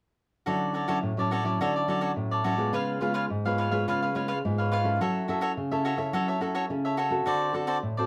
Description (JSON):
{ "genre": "samba", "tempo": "106 BPM", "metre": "4/4", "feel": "straight", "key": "D major", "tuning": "A4 = 440 Hz", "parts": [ { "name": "cavaquinho", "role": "accompaniment", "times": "0.5-8.1 s", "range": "E#4 to E#5", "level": "-30 LUFS", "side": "equal", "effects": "none" }, { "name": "nylon-string guitar", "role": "accompaniment", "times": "0.5-8.1 s", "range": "G#2 to A4", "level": "-31 LUFS", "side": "equal", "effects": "none" } ], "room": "moderate small room ambience, RT60 0.5 s", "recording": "none", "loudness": "-28 LUFS", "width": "mono", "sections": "0.5-8.1 A section", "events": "none", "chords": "0.5 Dmaj9; 2.7 C#7; 5.0 F#m7; 7.3 D7" }